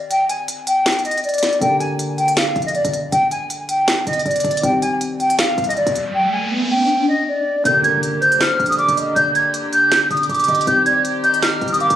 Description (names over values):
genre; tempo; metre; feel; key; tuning
hip hop, trap; 159 BPM; 4/4; half-time; G phrygian; A4 = 437 Hz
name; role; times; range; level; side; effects
dark concert grand piano; accompaniment; 0.0-12.0 s; D3 to G4; -28 LUFS; left 2 dB; low-pass filter
hollow concert flute; melody; 0.1-12.0 s; D5 to Ab6; -16 LUFS; equal; low-pass filter, plate reverb, tape echo
trap drum kit; drums; 0.1-12.0 s; handclaps, hi-hat, snare drum; -23 LUFS; equal; none
short 808-style bass; bass; 1.6-12.0 s; G1 to Eb2; -28 LUFS; equal; none
riser and impact; sound effects; 5.8-9.2 s; none; -22 LUFS; equal; none
dark chamber string section; sustained chords; 7.7-12.0 s; D3 to G4; -26 LUFS; left 2 dB; none
hollow clarinet-like synth lead; second line; 7.8-12.0 s; Bb4 to F5; -26 LUFS; equal; chorus, phaser, tape echo
room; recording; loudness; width
wet studio ambience, RT60 0.5 s; recorded on a phone in the room, club reverb, compression; -15 LUFS; side -11 dB against mid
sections
0.0-7.7 A section; 7.7-12.0 B section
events
break 0.0-1.6; riser 5.8-7.7; impact 7.7-9.2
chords
0.0 Cm; 1.6 Gm; 4.6 Cm; 7.7 Gm; 10.7 Cm